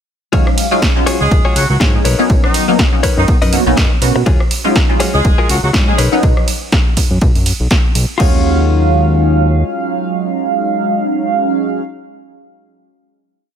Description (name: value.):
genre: filtered disco house.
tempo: 122 BPM.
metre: 4/4.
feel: swing 57% on 16ths.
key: Eb minor.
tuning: A4 = 436 Hz.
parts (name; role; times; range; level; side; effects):
funky polysynth comp; accompaniment; 0.3-11.8 s; Gb3 to F5; -16 LUFS; right 1 dB; chorus, phaser, sidechain pumping.
direct-recorded clean electric guitar; riff; 0.3-11.8 s; D#4 to D#5; -21 LUFS; left 6 dB; vintage 12-bit sampler grit, sidechain pumping.
fat analog bass; bass; 0.3-9.6 s; Eb1 to B2; -15 LUFS; equal; sidechain pumping.
electronic kick drum; drums; 0.3-8.3 s; none; -13 LUFS; equal; none.
punchy analog drum machine; drums; 0.3-8.3 s; crash cymbal, hi-hat, ride cymbal, rim click, snare drum; -20 LUFS; right 1 dB; sidechain pumping on cymbals, sidechain pumping on hats.
warm horn section; melody; 1.2-6.0 s; D#3 to Ab4; -20 LUFS; right 1 dB; sidechain pumping, ping-pong delay.
room: digital ambience.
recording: none.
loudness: -11 LUFS.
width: side -8 dB against mid.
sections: 0.3-8.2 drop; 8.2-12.1 final chord.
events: drop 0.3-8.2.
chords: 0.3 Ebm11; 2.1 Bmaj9; 4.3 Ebm11; 6.0 Badd9; 8.2 Ebm11.